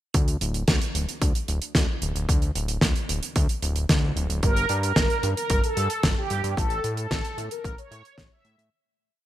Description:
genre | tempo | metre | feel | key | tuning
italo disco | 112 BPM | 4/4 | straight | unclear | A4 = 441 Hz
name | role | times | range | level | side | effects
fat analog bass | bass | 0.1-8.7 s | D1 to A2 | -27 LUFS | equal | none
damped 70s drum kit | drums | 0.1-8.7 s | hi-hat, snare drum | -27 LUFS | right 1 dB | none
electronic kick drum | drums | 0.1-8.3 s | none | -24 LUFS | equal | overdrive
mellow synth brass | melody | 4.4-8.7 s | G4 to E5 | -27 LUFS | right 2 dB | chorus, phaser, cassette tape, ping-pong delay
room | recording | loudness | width
light reverb, small room ambience | bright 1980s-style digital production | -22 LUFS | side -13 dB against mid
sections
0.1-8.7 verse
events
fade-out 5.9-8.7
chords
0.1 N.C.; 4.4 Gmadd9; 6.6 A

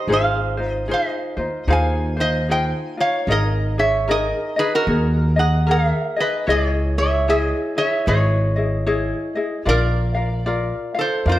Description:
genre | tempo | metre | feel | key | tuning
Hawaiian | 75 BPM | 4/4 | swing 61% on 8ths | Ab major | A4 = 440 Hz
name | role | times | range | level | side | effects
metal-body resonator slide guitar | melody | 0.0-11.4 s | E#4 to Ab5 | -21 LUFS | right 1 dB | none
ukulele | accompaniment | 0.0-11.4 s | Eb4 to E#5 | -23 LUFS | left 3 dB | none
upright bass | bass | 0.1-11.4 s | Ab1 to E#2 | -20 LUFS | equal | none
room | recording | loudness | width
moderate recital hall reverb, RT60 1.4 s | none | -17 LUFS | side -14 dB against mid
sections
0.0-3.3 A section; 3.3-11.4 B section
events
none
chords
0.1 Ab6; 3.3 G#sus2; 6.5 C#madd9; 9.7 A#

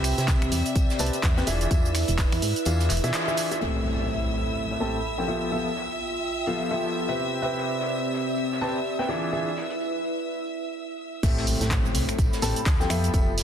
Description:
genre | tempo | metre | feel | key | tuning
piano house | 126 BPM | 4/4 | swing 59% on 16ths | A minor | A4 = 440 Hz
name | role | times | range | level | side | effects
clear chamber violin section | sustained chords | 0.0-11.2 s | E5 to E6 | -32 LUFS | right 1 dB | sidechain pumping
warm concert grand piano | riff | 0.0-13.3 s | A2 to A5 | -28 LUFS | left 1 dB | sidechain pumping, low-pass filter, digital delay
solid FM bass | bass | 0.0-3.1, 11.2-13.4 s | E1 to C3 | -26 LUFS | equal | sidechain pumping
punchy analog drum machine | drums | 0.0-13.4 s | crash cymbal, finger snaps, handclaps, hi-hat, shaker | -30 LUFS | right 1 dB | low-pass filter on snare, low-pass filter on perc, low-pass filter on hats, low-pass filter on cymbals, low-pass filter on room
vintage drum kit | drums | 0.0-13.4 s | hi-hat, snare drum, tambourine | -41 LUFS | equal | none
warbly tape-like pad | texture | 0.0-13.4 s | C4 to B5 | -32 LUFS | right 1 dB | chorus, built-in reverb, sidechain pumping
electronic kick drum | drums | 0.3-2.3, 11.2-13.2 s | none | -23 LUFS | equal | none
impact | sound effects | 3.6-5.5, 11.2-13.1 s | none | -32 LUFS | equal | none
room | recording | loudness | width
moderate lush hall reverb, RT60 1.8 s, small room ambience | dense, heavily limited modern master | -23 LUFS | side -9 dB against mid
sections
0.0-3.6 A section; 3.6-11.2 B section; 11.2-13.4 C section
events
kick drops out 2.7-3.6; band accent 3.1; impact 3.6-5.5, 11.2-13.1; filter sweep on grand piano 3.6-11.2; break 10.3-11.2; drop 11.2-13.4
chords
0.0 Cmaj7; 1.5 E7b9; 3.6 Am7; 5.3 Fmaj9#11; 7.2 Cmaj7; 9.1 E7b9; 11.2 Am7; 12.9 Fmaj9#11

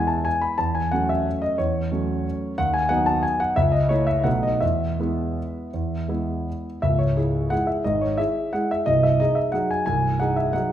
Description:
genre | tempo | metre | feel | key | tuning
classical, piano waltz | 157-192 BPM | 3/4 | rubato | E major, C# minor from 6.8 s | A4 = 439 Hz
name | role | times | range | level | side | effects
warm concert grand piano | solo | 0.0-10.7 s | B#0 to B5 | -20 LUFS | equal | none
room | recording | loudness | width
wet recital hall reverb, RT60 1.4 s | minimal, uncompressed stereo recording | -20 LUFS | side -11 dB against mid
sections
0.0-6.8 A section; 6.8-10.7 B section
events
none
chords
0.0 E; 0.6 F#m7/E; 2.6 B/D#; 3.6 A/C#; 4.3 B7; 4.6 E; 6.8 C#m; 8.9 G#7/B#

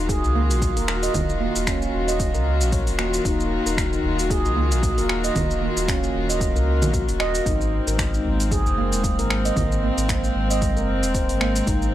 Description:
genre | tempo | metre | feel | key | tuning
organic downtempo | 114 BPM | 4/4 | swing 56% on 16ths | Eb dorian | A4 = 439 Hz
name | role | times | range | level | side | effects
rich chamber string section | sustained chords | 0.0-11.9 s | Eb3 to Gb4 | -26 LUFS | left 2 dB | sidechain pumping
warm sub bass | bass | 0.0-11.9 s | Eb1 to Db2 | -24 LUFS | equal | none
handpan | arpeggios | 0.1-11.8 s | Bb3 to Eb5 | -26 LUFS | right 3 dB | tape echo
deep house drum kit | drums | 0.1-11.9 s | congas, finger snaps, hi-hat, shaker | -28 LUFS | right 1 dB | overdrive, studio reverb
electronic kick drum | drums | 0.1-11.8 s | none | -27 LUFS | equal | overdrive, studio reverb
udu | percussion | 0.2-0.3, 4.0-8.8 s | none | -29 LUFS | left 1 dB | none
room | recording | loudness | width
small room ambience | dry, gritty hardware recording | -19 LUFS | side -13 dB against mid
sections
0.0-11.9 A section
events
none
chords
0.0 Ebm; 7.5 Abadd9

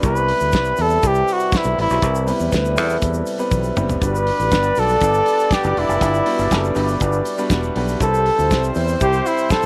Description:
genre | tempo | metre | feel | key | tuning
disco | 120 BPM | 4/4 | straight | unclear | A4 = 439 Hz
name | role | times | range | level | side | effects
warm baby grand piano | accompaniment | 0.0-9.7 s | G3 to F#5 | -29 LUFS | equal | none
warm French horn section | sustained chords | 0.0-9.7 s | C3 to B4 | -28 LUFS | equal | none
fingered electric bass | bass | 0.0-9.7 s | E1 to E2 | -24 LUFS | equal | none
damped 70s drum kit | drums | 0.0-9.6 s | hi-hat, kick drum, snare drum, toms | -26 LUFS | equal | none
egg shaker | percussion | 0.0-9.7 s | none | -40 LUFS | equal | none
clear flugelhorn | melody | 0.1-9.7 s | E4 to B4 | -21 LUFS | equal | none
warm horn section | stabs | 4.0-9.7 s | G3 to D5 | -28 LUFS | equal | slapback echo
room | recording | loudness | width
light reverb, studio ambience | none | -18 LUFS | mono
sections
0.0-9.7 A section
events
drum fill 3.5-4.0; grand piano fill 6.5-8.0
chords
0.0 Cmaj7; 4.0 Gmaj7; 8.0 Cmaj7

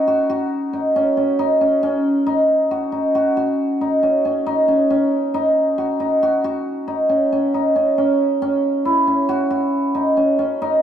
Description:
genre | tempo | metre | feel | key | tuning
progressive instrumental, progressive | 137 BPM | 7/4 | straight | unclear | A4 = 441 Hz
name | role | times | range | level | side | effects
cimbalom | solo | 0.0-10.8 s | C#4 to F#4 | -16 LUFS | equal | none
room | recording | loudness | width
moderate studio reverb, RT60 0.9 s | heard from further back in the room | -16 LUFS | side -9 dB against mid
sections
0.0-2.3 A section; 2.3-10.8 B section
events
none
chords
0.0 C#sus24; 8.4 F#5

